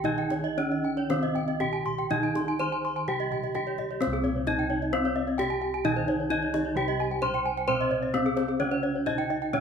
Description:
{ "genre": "Balinese gamelan", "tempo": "111-131 BPM", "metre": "4/4", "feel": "straight", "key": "C pelog", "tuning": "A4 = 440 Hz", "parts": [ { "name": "gamelan-type bronze metallophone", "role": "melody", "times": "0.0-9.6 s", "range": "C4 to C5", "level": "-28 LUFS", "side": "left 1 dB", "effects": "none" }, { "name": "gamelan-type bronze metallophone", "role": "accompaniment", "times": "0.0-9.6 s", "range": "C3 to C4", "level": "-38 LUFS", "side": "right 3 dB", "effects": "none" }, { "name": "gamelan-type bronze metallophone", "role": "arpeggios", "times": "0.0-9.6 s", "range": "C5 to C6", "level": "-32 LUFS", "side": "left 5 dB", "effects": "none" }, { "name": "gamelan-type bronze metallophone", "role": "arpeggios", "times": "0.0-9.5 s", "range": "Ab4 to Ab5", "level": "-34 LUFS", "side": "right 8 dB", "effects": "none" }, { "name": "gamelan-type bossed gongs", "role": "bass", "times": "0.0-9.6 s", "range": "C2 to C5", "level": "-34 LUFS", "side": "equal", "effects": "none" }, { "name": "kendang", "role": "percussion", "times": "0.0-9.6 s", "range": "none", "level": "-39 LUFS", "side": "right 5 dB", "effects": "none" } ], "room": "moderate large studio reverb, RT60 1.1 s", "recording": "band playing live in one room", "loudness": "-25 LUFS", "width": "side -6 dB against mid", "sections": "0.0-4.0 A section; 4.0-9.6 B section", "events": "none", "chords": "none" }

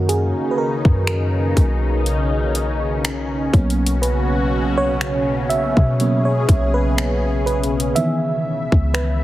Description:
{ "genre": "contemporary R&B", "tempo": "61 BPM", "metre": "4/4", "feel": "swing 54% on 16ths", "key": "unclear", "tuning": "A4 = 439 Hz", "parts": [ { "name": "FM electric piano with tremolo", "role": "accompaniment", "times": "0.0-9.2 s", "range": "D#3 to E5", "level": "-21 LUFS", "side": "right 2 dB", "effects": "none" }, { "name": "lush unison pad", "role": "sustained chords", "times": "0.0-9.2 s", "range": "B2 to E5", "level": "-24 LUFS", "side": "left 2 dB", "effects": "chorus, phaser, sidechain pumping" }, { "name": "warm 808-style bass", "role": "bass", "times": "0.0-9.2 s", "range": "B1 to B2", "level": "-20 LUFS", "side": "equal", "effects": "none" }, { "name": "trap drum kit", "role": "drums", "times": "0.1-9.2 s", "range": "finger snaps, hi-hat, kick drum", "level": "-18 LUFS", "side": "equal", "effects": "none" } ], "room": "digital ambience", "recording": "heavily compressed radio sound", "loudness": "-16 LUFS", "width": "side -15 dB against mid", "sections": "0.0-9.2 A section", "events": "FM electric piano solo 0.0-9.2", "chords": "0.0 Bmaj9; 3.5 G#m11/B; 8.0 C#m9" }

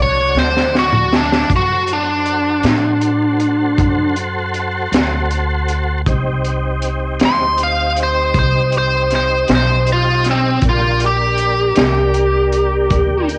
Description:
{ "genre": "slow blues", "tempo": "53 BPM (dotted quarters)", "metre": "12/8", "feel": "straight", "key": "unclear", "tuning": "A4 = 440 Hz", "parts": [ { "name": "biting lead guitar", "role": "melody", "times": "0.0-13.3 s", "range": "C4 to C6", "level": "-18 LUFS", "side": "equal", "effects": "overdrive, cassette tape" }, { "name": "tonewheel organ", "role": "sustained chords", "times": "0.0-13.4 s", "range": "Bb3 to C5", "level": "-25 LUFS", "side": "equal", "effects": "slow rotary speaker, chorus vibrato" }, { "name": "upright bass", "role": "bass", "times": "0.0-13.4 s", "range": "Bb1 to A2", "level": "-22 LUFS", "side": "equal", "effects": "none" }, { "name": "crunchy breakbeat drum kit", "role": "drums", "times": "0.4-13.4 s", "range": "hi-hat, kick drum, snare drum, toms", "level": "-21 LUFS", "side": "equal", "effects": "cassette tape" } ], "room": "light reverb", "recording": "home recording on cassette, nothing above 10.3 kHz", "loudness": "-16 LUFS", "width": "mono", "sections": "0.0-13.4 A section", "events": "drum fill 0.4-1.5", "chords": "0.0 D7; 6.1 Cm; 10.6 Gm" }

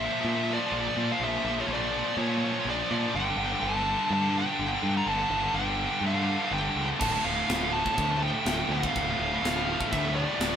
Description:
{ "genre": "heavy metal", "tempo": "124 BPM", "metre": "4/4", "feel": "straight", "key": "D harmonic minor", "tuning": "A4 = 440 Hz", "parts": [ { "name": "high-gain lead guitar", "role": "melody", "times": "0.0-10.6 s", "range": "C#5 to Bb5", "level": "-30 LUFS", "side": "equal", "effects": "distortion" }, { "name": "scooped high-gain guitar", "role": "riff", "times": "0.0-10.6 s", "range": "D2 to F3", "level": "-28 LUFS", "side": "equal", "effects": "distortion" }, { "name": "growling picked electric bass", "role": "bass", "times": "0.0-10.6 s", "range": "D1 to Bb2", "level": "-32 LUFS", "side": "equal", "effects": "overdrive" }, { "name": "tight metal drum kit", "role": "drums", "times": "7.0-10.5 s", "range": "china cymbal, crash cymbal, kick drum, snare drum", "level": "-32 LUFS", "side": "equal", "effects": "none" } ], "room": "moderate stone room reverb, RT60 1.2 s", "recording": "band playing live in one room", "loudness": "-25 LUFS", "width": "side -8 dB against mid", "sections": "0.0-10.6 A section", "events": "none", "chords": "0.0 Bb; 3.1 G5; 7.0 Dm" }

